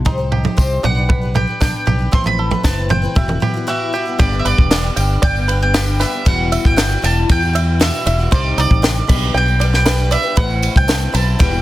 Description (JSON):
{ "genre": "indie folk with a building arrangement", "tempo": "116 BPM", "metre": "4/4", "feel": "straight", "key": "G major", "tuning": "A4 = 445 Hz", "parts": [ { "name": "fingerpicked steel-string acoustic guitar", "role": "accompaniment", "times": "0.0-2.1 s", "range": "G3 to G4", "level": "-36 LUFS", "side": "left 3 dB", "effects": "none" }, { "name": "picked twelve-string acoustic guitar", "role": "accompaniment", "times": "0.0-11.6 s", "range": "E2 to C5", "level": "-25 LUFS", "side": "left 5 dB", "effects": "none" }, { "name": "fingered electric bass", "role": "bass", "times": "0.0-11.6 s", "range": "E1 to E2", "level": "-18 LUFS", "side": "equal", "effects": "none" }, { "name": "bluegrass banjo", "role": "arpeggios", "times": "0.1-11.6 s", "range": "C4 to B5", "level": "-25 LUFS", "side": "right 3 dB", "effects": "none" }, { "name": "compact cocktail drum kit", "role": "drums", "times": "0.1-11.5 s", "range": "crash cymbal, kick drum, ride cymbal, snare drum, toms", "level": "-17 LUFS", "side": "equal", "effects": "soft clipping on snare" }, { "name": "tambourine", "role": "percussion", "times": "0.6-11.6 s", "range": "none", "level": "-33 LUFS", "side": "left 5 dB", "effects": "none" }, { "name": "bowl-back mandolin", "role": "melody", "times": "0.8-11.6 s", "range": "D5 to C6", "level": "-21 LUFS", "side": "right 2 dB", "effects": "none" }, { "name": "clear upright piano", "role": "accompaniment", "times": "4.2-11.6 s", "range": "G1 to C5", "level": "-29 LUFS", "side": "left 3 dB", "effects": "none" } ], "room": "studio ambience", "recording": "dense, heavily limited modern master", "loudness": "-13 LUFS", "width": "side -15 dB against mid", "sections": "0.0-4.2 A section; 4.2-11.6 B section", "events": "none", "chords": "0.1 Cm; 0.8 G/B; 2.1 Amadd9; 3.2 Emadd9; 4.2 G; 6.3 Emadd9; 8.3 Cm; 9.1 G/B; 10.4 Amadd9", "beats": "| 0.06 0.58 1.10 1.61 | 2.13 2.65 3.17 3.68 | 4.20 4.71 5.23 5.74 | 6.26 6.77 7.29 7.80 | 8.31 8.83 9.34 9.86 | 10.37 10.89 11.40" }